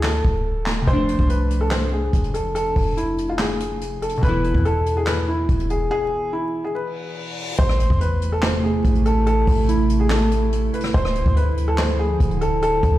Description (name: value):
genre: hip hop, trap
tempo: 143 BPM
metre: 4/4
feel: half-time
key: A harmonic minor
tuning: A4 = 440 Hz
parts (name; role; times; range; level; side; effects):
- felt-muted upright piano; melody; 0.0-13.0 s; E4 to C5; -23 LUFS; equal; tape echo
- clean 808-style bass; bass; 0.0-13.0 s; D1 to E2; -22 LUFS; equal; none
- jazz brush drum kit; drums; 0.0-12.9 s; handclaps, hi-hat, kick drum, rim click, snare drum; -23 LUFS; equal; none
- glassy digital keys; accompaniment; 0.8-7.6 s; B2 to E4; -27 LUFS; equal; chorus
- reverse cymbal and impact; sound effects; 6.9-9.3 s; none; -33 LUFS; left 1 dB; none
- warbly tape-like pad; sustained chords; 8.1-13.0 s; C3 to E4; -24 LUFS; right 4 dB; chorus, built-in reverb, phaser
room: small room reverb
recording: played on a big sound system in a bare room, large studio reverb, vinyl crackle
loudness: -18 LUFS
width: side -14 dB against mid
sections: 0.0-7.6 A section; 7.6-13.0 B section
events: break 0.0-0.9, 5.9-7.6; reverse cymbal 6.9-7.6; impact 7.6-9.3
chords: 0.0 D5; 0.9 F6; 4.2 E; 7.6 Am; 10.9 Dmadd9